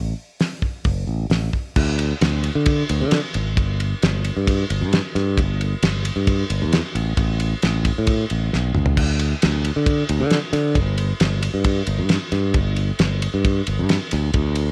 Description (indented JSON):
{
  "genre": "classic rock",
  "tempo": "134 BPM",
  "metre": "4/4",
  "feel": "straight",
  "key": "unclear",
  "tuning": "A4 = 440 Hz",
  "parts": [
    { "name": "modern bright fingered electric bass", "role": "bass", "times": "0.0-14.7 s", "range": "F#1 to D3", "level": "-23 LUFS", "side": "equal", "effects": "none" },
    { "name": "damped 70s drum kit", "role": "drums", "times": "0.4-14.7 s", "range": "crash cymbal, hi-hat, kick drum, ride cymbal, snare drum, toms", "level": "-24 LUFS", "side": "equal", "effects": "none" }
  ],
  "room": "little or no reverb",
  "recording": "none",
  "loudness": "-20 LUFS",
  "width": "mono",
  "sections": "0.0-1.8 A section; 1.8-14.7 B section",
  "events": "drum fill 8.5-9.0",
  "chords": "none"
}